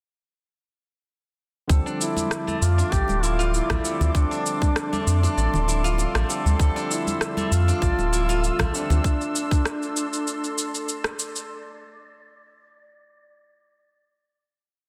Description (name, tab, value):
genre	organic downtempo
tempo	98 BPM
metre	4/4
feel	swing 54% on 16ths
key	D minor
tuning	A4 = 443 Hz
part	barky tine electric piano	accompaniment	1.7-9.1 s	D3 to A4	-35 LUFS	equal	sidechain pumping, digital delay
part	warm analog pad	sustained chords	1.7-11.5 s	A4 to E6	-36 LUFS	equal	chorus, vintage 12-bit sampler grit, sidechain pumping
part	warm sub bass	bass	1.7-9.0 s	D1 to F2	-24 LUFS	equal	tube saturation, sidechain pumping
part	electronic kick drum	drums	1.7-9.6 s	none	-24 LUFS	equal	none
part	electronic shaker and rim click	drums	1.7-11.5 s	none	-31 LUFS	equal	none
part	wind-like tuned noise texture	texture	2.2-11.5 s	D5	-42 LUFS	equal	built-in reverb
part	steel-string zither	arpeggios	1.9-11.9 s	A3 to D5	-34 LUFS	equal	low-pass filter, digital delay
part	mellow duduk	melody	2.0-10.9 s	D4 to G4	-31 LUFS	equal	digital delay
part	congas and bongos	percussion	2.2-9.0 s	none	-35 LUFS	equal	none
room	light reverb, digital ambience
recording	dense, heavily limited modern master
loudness	-23 LUFS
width	mono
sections	1.7-11.5 groove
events	none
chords	1.7 Dm7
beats	| 1.70 2.31 2.92 3.54 | 4.15 4.76 5.37 5.99 | 6.60 7.21 7.82 8.43 | 9.05 9.66 10.27 10.88